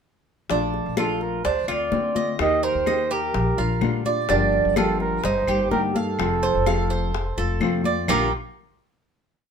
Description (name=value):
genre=latin, Cuban son and guajira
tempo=126 BPM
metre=4/4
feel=straight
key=Bb major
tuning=A4 = 440 Hz
part: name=nylon-string guitar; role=accompaniment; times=0.5-8.3 s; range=Bb2 to G4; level=-27 LUFS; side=left 4 dB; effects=none
part: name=Cuban tres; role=arpeggios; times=0.5-8.3 s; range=Bb3 to F5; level=-25 LUFS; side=right 4 dB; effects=none
part: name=upright bass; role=bass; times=0.5-8.3 s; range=F1 to D3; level=-27 LUFS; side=left 1 dB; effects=none
part: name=bongos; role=percussion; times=0.5-8.2 s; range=none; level=-32 LUFS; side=left 8 dB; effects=none
part: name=congas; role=percussion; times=0.5-8.2 s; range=none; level=-29 LUFS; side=left 5 dB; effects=none
part: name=trumpet with bucket mute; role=melody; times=1.0-8.3 s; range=A4 to Eb5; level=-25 LUFS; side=right 4 dB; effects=none
part: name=claves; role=percussion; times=1.0-8.2 s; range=none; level=-33 LUFS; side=left 3 dB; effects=none
room=light reverb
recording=minimal, uncompressed stereo recording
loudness=-20 LUFS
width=side -6 dB against mid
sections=0.5-8.1 verse; 8.1-9.5 final chord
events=none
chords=0.5 Bbmaj7; 1.4 Dm7; 2.4 Eb; 3.3 Bb6; 4.3 Gm7; 5.2 Ebmaj7/G; 6.2 F; 8.1 Bb6